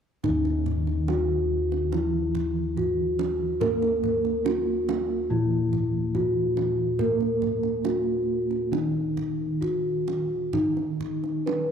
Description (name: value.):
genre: Javanese gamelan.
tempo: 70 BPM.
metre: 4/4.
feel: uneven beats.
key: unclear.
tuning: A4 = 440 Hz.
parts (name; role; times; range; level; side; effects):
gamelan-type bronze metallophone; melody; 0.2-11.7 s; Eb4 to Cb5-20c; -26 LUFS; left 2 dB; none.
gamelan-type bronze metallophone; accompaniment; 0.2-11.7 s; Eb3 to Bb3-30c; -31 LUFS; right 11 dB; none.
gamelan-type bossed gongs; bass; 0.2-11.7 s; Eb2 to Bb4-30c; -29 LUFS; left 2 dB; none.
kendang; percussion; 0.2-11.7 s; none; -34 LUFS; right 8 dB; none.
room: light reverb.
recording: 1960s-style stereo.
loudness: -23 LUFS.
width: side -7 dB against mid.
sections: 0.2-11.7 A section.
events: none.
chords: none.